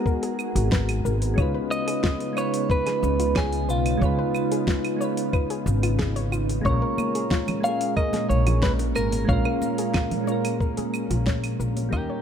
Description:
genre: sunset chillout.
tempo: 91 BPM.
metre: 4/4.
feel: straight.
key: unclear.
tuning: A4 = 440 Hz.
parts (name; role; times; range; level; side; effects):
clean electric guitar; melody; 0.0-12.2 s; E#4 to E#5; -29 LUFS; right 1 dB; phaser, tape echo.
soft electric-piano-like synth keys; accompaniment; 0.0-12.2 s; A#2 to B4; -29 LUFS; moving between left 3 dB and right 5 dB; chorus, auto-pan, ping-pong delay.
soft string machine; sustained chords; 0.0-12.2 s; A#2 to G5; -30 LUFS; equal; ensemble chorus.
soft round pluck; arpeggios; 0.1-12.2 s; E#4 to D#5; -34 LUFS; left 6 dB; chorus, ping-pong delay.
electronic kick drum; drums; 0.1-12.1 s; none; -25 LUFS; equal; studio ambience.
smooth R&B drum kit; drums; 0.1-12.1 s; claves, hi-hat, shaker, snare drum; -31 LUFS; right 1 dB; studio ambience.
upright bass; bass; 0.6-12.1 s; G#1 to D#2; -24 LUFS; equal; none.
congas and bongos; percussion; 7.0-11.9 s; none; -34 LUFS; right 3 dB; none.
room: light reverb.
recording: none.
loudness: -21 LUFS.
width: side -8 dB against mid.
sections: 0.0-12.2 A section.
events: fade-out 10.2-12.2.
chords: 0.0 G#m9; 1.4 C#9; 6.7 A#m7.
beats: 0.06 0.72 | 1.38 2.04 2.70 3.36 | 4.01 4.67 5.33 5.99 | 6.65 7.31 7.97 8.63 | 9.29 9.95 10.61 11.27 | 11.93.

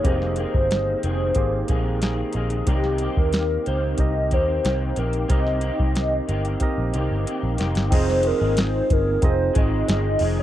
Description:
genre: indie pop, bedroom pop.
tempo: 92 BPM.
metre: 4/4.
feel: straight.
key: F minor.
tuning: A4 = 442 Hz.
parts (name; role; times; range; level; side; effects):
hollow clarinet-like synth lead; melody; 0.0-10.4 s; G4 to Eb5; -24 LUFS; equal; analog chorus, slapback echo.
barky tine electric piano; accompaniment; 0.0-10.4 s; Bb3 to Eb5; -29 LUFS; right 6 dB; overdrive, cassette tape.
electric guitar through a small old amp; accompaniment; 0.0-10.4 s; F2 to Ab4; -29 LUFS; left 3 dB; ensemble chorus, warbly pitch drift.
vintage muted picked electric bass; bass; 0.0-10.4 s; F1 to Eb2; -24 LUFS; equal; none.
soft vintage rhythm box; drums; 0.0-10.4 s; crash cymbal, hi-hat, kick drum, snare drum; -22 LUFS; equal; overdrive.
room: little or no reverb.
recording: dry, close 1970s-style studio recording.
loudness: -19 LUFS.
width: side -12 dB against mid.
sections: 0.0-7.9 A section; 7.9-10.4 B section.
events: drum fill 6.6-7.9.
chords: 0.0 Fm11; 2.7 Cm7; 7.9 Fm7.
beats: | 0.05 0.71 1.36 2.02 | 2.67 3.33 3.99 4.64 | 5.30 5.96 6.61 7.27 | 7.92 8.57 9.23 9.88.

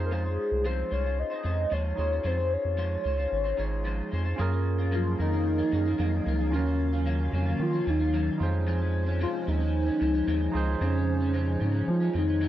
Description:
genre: indie pop.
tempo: 112 BPM.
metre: 4/4.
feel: straight.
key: Db major.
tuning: A4 = 440 Hz.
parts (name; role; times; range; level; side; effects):
barky tine electric piano; accompaniment; 0.0-12.5 s; Db4 to Db5; -37 LUFS; right 6 dB; cassette tape.
electric guitar through a small old amp; accompaniment; 0.0-12.5 s; F2 to C5; -35 LUFS; equal; analog chorus, warbly pitch drift.
round analog bass; bass; 0.0-12.5 s; Ab1 to F3; -28 LUFS; equal; none.
soft octave-layered synth lead; melody; 0.1-12.5 s; Db4 to Eb5; -29 LUFS; left 1 dB; phaser, analog chorus, slapback echo.
hollow soft pad; sustained chords; 4.8-12.5 s; Eb3 to F5; -36 LUFS; equal; ensemble chorus.
room: light reverb.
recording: dry, close 1970s-style studio recording.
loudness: -25 LUFS.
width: side -12 dB against mid.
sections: 0.0-4.4 A section; 4.4-12.5 B section.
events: none.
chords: 0.0 Dbmaj7; 4.4 Gbmaj7; 6.5 Ebm9; 8.4 Dbmaj7.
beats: | 0.11 0.65 1.18 1.72 | 2.25 2.79 3.32 3.86 | 4.39 4.93 5.46 6.00 | 6.53 7.07 7.60 8.14 | 8.67 9.21 9.74 10.28 | 10.81 11.34 11.88 12.41.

